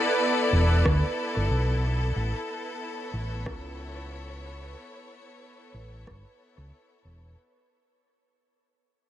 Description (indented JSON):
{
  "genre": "ambient dub",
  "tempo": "92 BPM",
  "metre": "4/4",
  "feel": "swing 56% on 16ths",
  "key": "unclear",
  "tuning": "A4 = 442 Hz",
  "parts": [
    { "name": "bright studio string section", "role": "sustained chords", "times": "0.0-7.4 s", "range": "B3 to D5", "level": "-29 LUFS", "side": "left 2 dB", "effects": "none" },
    { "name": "bubbling stepped-filter texture", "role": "texture", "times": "0.0-7.4 s", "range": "B4", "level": "-34 LUFS", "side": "right 6 dB", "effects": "chorus, built-in reverb" },
    { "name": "fingered electric bass", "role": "bass", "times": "0.5-7.3 s", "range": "E1 to D2", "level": "-26 LUFS", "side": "equal", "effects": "tube saturation" },
    { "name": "electronic kick drum", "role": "drums", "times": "0.9-6.2 s", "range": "none", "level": "-32 LUFS", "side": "equal", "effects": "overdrive" },
    { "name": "electronic rim click", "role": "drums", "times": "0.9-6.2 s", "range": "none", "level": "-36 LUFS", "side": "equal", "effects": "none" }
  ],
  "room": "light reverb",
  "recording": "nothing above 10.6 kHz",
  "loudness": "-23 LUFS",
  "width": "side -12 dB against mid",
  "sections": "0.0-7.4 A section",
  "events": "fade-out 0.0-7.4",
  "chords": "0.0 E7(no3); 2.2 Aadd9"
}